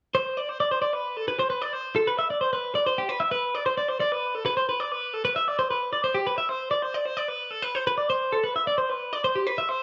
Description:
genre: rock.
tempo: 264 BPM (eighths).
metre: 7/8.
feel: straight.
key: C major.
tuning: A4 = 440 Hz.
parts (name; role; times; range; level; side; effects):
twelve-string electric guitar; solo; 0.1-9.8 s; G4 to E5; -26 LUFS; equal; spring reverb.
room: moderate studio reverb, RT60 0.6 s.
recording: worn, warbling old tape, cassette tape, warbly pitch drift.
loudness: -26 LUFS.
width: mono.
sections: 0.1-9.8 A section.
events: none.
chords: none.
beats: | 0.14 0.37 0.59 0.82 1.05 1.27 1.50 | 1.73 1.95 2.18 2.41 2.63 2.86 3.09 | 3.31 3.54 3.77 3.99 4.22 4.45 4.67 | 4.90 5.13 5.36 5.58 5.81 6.04 6.26 | 6.49 6.72 6.95 7.17 7.40 7.63 7.85 | 8.08 8.31 8.54 8.77 8.99 9.22 9.45 | 9.68.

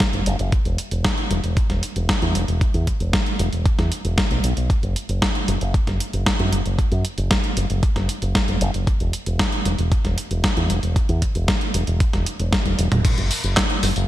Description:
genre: italo disco.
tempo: 115 BPM.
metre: 4/4.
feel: straight.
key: unclear.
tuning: A4 = 440 Hz.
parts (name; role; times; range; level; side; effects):
clean 12-bit digital drum machine; drums; 0.0-14.1 s; crash cymbal, handclaps, hi-hat, snare drum, tambourine, toms; -23 LUFS; equal; gated reverb.
electronic kick drum; drums; 0.0-13.7 s; none; -21 LUFS; equal; none.
fingered electric bass with an envelope filter; bass; 0.1-14.1 s; E1 to F#2; -22 LUFS; equal; tube saturation.
room: light reverb.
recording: bright 1980s-style digital production.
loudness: -18 LUFS.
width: side -14 dB against mid.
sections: 0.0-13.0 A section; 13.0-14.1 B section.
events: drum fill 12.5-13.0.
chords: none.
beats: 0.00 | 0.53 1.05 1.57 2.09 | 2.61 3.13 3.65 4.18 | 4.70 5.22 5.74 6.26 | 6.79 7.31 7.83 8.35 | 8.87 9.39 9.92 10.44 | 10.96 11.48 12.00 12.53 | 13.05 13.57.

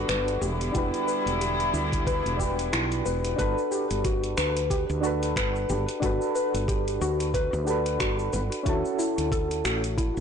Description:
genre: sunset chillout.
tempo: 91 BPM.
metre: 4/4.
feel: swing 57% on 16ths.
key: G lydian.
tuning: A4 = 445 Hz.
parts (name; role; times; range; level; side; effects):
soft electric-piano-like synth keys; accompaniment; 0.0-10.2 s; C#4 to B4; -30 LUFS; right 2 dB; chorus, tremolo, auto-pan, tape echo.
warm studio string section; sustained chords; 0.0-3.4 s; D3 to F#4; -30 LUFS; left 2 dB; none.
soft round pluck; arpeggios; 0.0-10.2 s; E4 to B4; -30 LUFS; left 3 dB; chorus, tape echo.
woody fretless electric bass; bass; 0.0-10.2 s; E1 to D2; -30 LUFS; right 1 dB; none.
deep house drum kit; drums; 0.1-10.2 s; finger snaps, hi-hat, shaker; -34 LUFS; equal; overdrive, soft clipping on snare.
electronic kick drum; drums; 0.7-10.1 s; none; -29 LUFS; right 1 dB; none.
room: moderate plate reverb, RT60 2.3 s.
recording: blown-out, overdriven recording, overdrive, nothing above 10.3 kHz.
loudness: -24 LUFS.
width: side -7 dB against mid.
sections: 0.0-3.4 A section; 3.4-10.2 B section.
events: none.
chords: 0.4 Em7; 3.4 Gmaj7; 8.7 Dmaj9.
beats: 0.09 | 0.75 1.41 2.07 2.73 | 3.39 4.05 4.71 5.37 | 6.02 6.68 7.34 8.00 | 8.66 9.32 9.98.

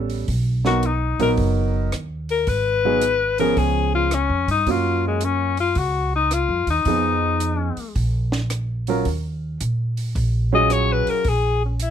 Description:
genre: jazz, small-group swing and bop.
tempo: 109 BPM.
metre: 4/4.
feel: swing 67% on 8ths.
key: Eb minor.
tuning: A4 = 440 Hz.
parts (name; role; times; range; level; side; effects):
warm concert grand piano; accompaniment; 0.0-11.2 s; F3 to A#4; -23 LUFS; right 6 dB; none.
upright bass; bass; 0.0-11.9 s; F#1 to Bb2; -23 LUFS; right 1 dB; none.
compact cocktail drum kit; drums; 0.1-11.9 s; hi-hat, kick drum, rim click, snare drum; -30 LUFS; right 1 dB; none.
clear alto saxophone; melody; 0.7-11.9 s; Ab3 to Eb5; -20 LUFS; left 6 dB; none.
room: little or no reverb.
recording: close, detailed microphones.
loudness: -18 LUFS.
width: side -9 dB against mid.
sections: 0.0-11.9 A section.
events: none.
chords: 0.3 Bmaj7; 2.5 Abm7; 3.6 Db7; 4.7 Gbmaj7; 6.9 Fm7b5; 8.0 Bb5; 9.1 Ebm11; 11.2 Bbm7.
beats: | 0.28 0.83 1.38 1.93 | 2.48 3.03 3.58 4.12 | 4.67 5.22 5.77 6.32 | 6.87 7.42 7.96 8.51 | 9.06 9.61 10.15 10.70 | 11.25 11.80.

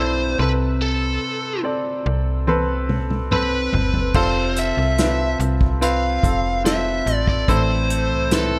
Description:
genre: pop ballad.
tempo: 72 BPM.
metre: 4/4.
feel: straight.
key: unclear.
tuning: A4 = 439 Hz.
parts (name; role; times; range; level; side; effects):
biting lead guitar; melody; 0.0-8.6 s; A4 to F5; -26 LUFS; equal; overdrive.
clear grand piano; accompaniment; 0.0-8.6 s; A2 to D5; -25 LUFS; equal; none.
slap-like FM bass; bass; 0.0-8.6 s; F1 to C2; -25 LUFS; equal; none.
unplugged drum kit; drums; 2.5-8.5 s; crash cymbal, hi-hat, kick drum, snare drum, toms; -24 LUFS; equal; none.
room: little or no reverb.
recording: none.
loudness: -20 LUFS.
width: mono.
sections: 0.0-4.1 A section; 4.1-8.6 B section.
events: drum fill 2.5-4.1.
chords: 0.4 Amadd9/C; 4.1 F; 7.5 Am.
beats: | 0.81 1.65 2.48 3.31 | 4.15 4.98 5.81 6.65 | 7.48 8.31.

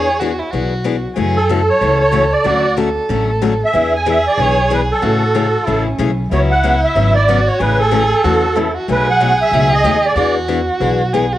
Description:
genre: acoustic string swing (jazz manouche).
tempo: 187 BPM.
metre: 4/4.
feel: swing 59% on 8ths.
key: A major.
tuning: A4 = 438 Hz.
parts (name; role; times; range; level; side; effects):
musette accordion; melody; 0.0-10.3 s; A4 to G#5; -15 LUFS; right 2 dB; cassette tape.
warm violin; second line; 0.0-11.4 s; C#4 to A4; -19 LUFS; right 2 dB; cassette tape.
picked steel-string acoustic guitar; accompaniment; 0.0-11.2 s; B2 to G#4; -20 LUFS; left 6 dB; cassette tape.
upright bass; bass; 0.0-11.3 s; G#1 to F#2; -19 LUFS; equal; none.
room: light reverb, studio reverb.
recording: home recording on cassette.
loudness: -12 LUFS.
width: side -14 dB against mid.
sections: 0.0-6.3 A section; 6.3-11.4 B section.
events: none.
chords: 0.0 E9; 1.2 F#m9; 2.5 Dmaj7; 3.7 E7; 5.0 Amaj7; 6.3 C#7sus4; 7.6 A6; 8.9 B7; 10.2 E7.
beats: 0.20 0.53 0.85 | 1.17 1.49 1.81 2.13 | 2.46 2.78 3.10 3.42 | 3.74 4.07 4.39 4.71 | 5.03 5.35 5.67 5.99 | 6.32 6.64 6.96 7.28 | 7.60 7.92 8.24 8.57 | 8.89 9.21 9.53 9.85 | 10.17 10.50 10.82 11.14.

